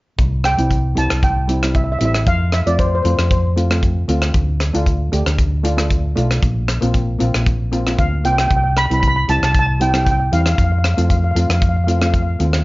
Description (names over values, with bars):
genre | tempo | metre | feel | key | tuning
calypso | 116 BPM | 4/4 | swing 53% on 16ths | C major | A4 = 437 Hz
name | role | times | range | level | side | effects
hollow-body short-scale fingered electric bass | bass | 0.2-12.6 s | A1 to F2 | -17 LUFS | equal | none
tight funk drum kit | drums | 0.2-12.6 s | hi-hat, kick drum, rim click | -20 LUFS | equal | none
steel pan | melody | 0.5-4.0, 8.0-12.3 s | C5 to B5 | -20 LUFS | equal | plate reverb
steel pan | accompaniment | 0.6-12.6 s | G3 to G4 | -23 LUFS | equal | none
room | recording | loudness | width
light reverb | worn, warbling old tape, cassette tape, warbly pitch drift, nothing above 7.5 kHz | -14 LUFS | side -21 dB against mid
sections
0.2-12.6 A section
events
none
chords
0.2 C; 2.3 F; 4.3 Dm; 6.4 Bbsus2; 8.5 C; 10.6 F